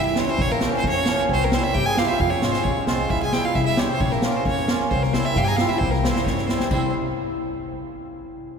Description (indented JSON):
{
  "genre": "klezmer",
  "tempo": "133 BPM",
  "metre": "2/4",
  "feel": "straight",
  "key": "C phrygian dominant",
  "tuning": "A4 = 440 Hz",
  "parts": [
    { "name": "bright violin", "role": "melody", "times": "0.0-6.9 s", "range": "Bb4 to Bb5", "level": "-25 LUFS", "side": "right 2 dB", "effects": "none" },
    { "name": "mellow accordion", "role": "second line", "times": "0.0-6.9 s", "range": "Bb3 to Ab4", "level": "-28 LUFS", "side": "left 2 dB", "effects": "none" },
    { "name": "cimbalom", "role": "accompaniment", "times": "0.0-6.9 s", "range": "E3 to G4", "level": "-26 LUFS", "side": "right 1 dB", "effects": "none" },
    { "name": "upright bass", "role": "bass", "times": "0.0-6.9 s", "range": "Ab1 to G2", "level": "-27 LUFS", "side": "left 1 dB", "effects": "none" },
    { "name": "street-band drum kit", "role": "drums", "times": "0.2-6.8 s", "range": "crash cymbal, kick drum, snare drum", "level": "-25 LUFS", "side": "equal", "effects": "none" }
  ],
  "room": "wet cathedral reverb, RT60 4.8 s",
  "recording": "recorded in a church or concert hall",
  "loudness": "-19 LUFS",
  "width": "side -6 dB against mid",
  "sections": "0.0-6.7 A section",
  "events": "drum fill 6.3-6.7",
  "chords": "0.4 Bbm; 1.3 C; 2.2 Fm; 3.1 C; 4.0 Bbm; 4.9 C"
}